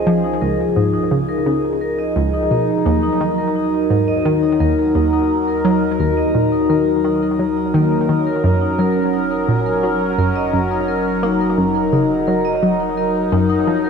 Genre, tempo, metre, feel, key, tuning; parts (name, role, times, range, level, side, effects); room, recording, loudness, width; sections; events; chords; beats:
ambient, sequencer-driven space music; 86 BPM; 4/4; straight; Eb minor; A4 = 439 Hz
sweeping resonant pad; sustained chords; 0.0-13.9 s; F3 to Bb4; -18 LUFS; equal; chorus, phaser, shimmer reverb
vibraphone with medium hard mallets; arpeggios; 0.0-13.9 s; Bb3 to Eb5; -23 LUFS; moving between left 6 dB and right 2 dB; auto-pan, low-pass filter, ping-pong delay, shimmer reverb
warm sub bass; bass; 0.0-13.9 s; Gb1 to Eb2; -37 LUFS; right 1 dB
analog pluck; riff; 0.1-13.9 s; Db2 to Bb3; -20 LUFS; equal; chorus, ping-pong delay
wet lush hall reverb, RT60 2.5 s; dreamy mix soaked in reverb; -15 LUFS; side -6 dB against mid
0.0-13.9 A section
fade-in on sub bass 0.0-13.9
0.0 Db; 2.9 Ebm; 8.4 Gb
| 0.07 0.76 1.46 2.16 | 2.86 3.55 4.25 4.95 | 5.65 6.34 7.04 7.74 | 8.44 9.13 9.83 10.53 | 11.23 11.93 12.62 13.32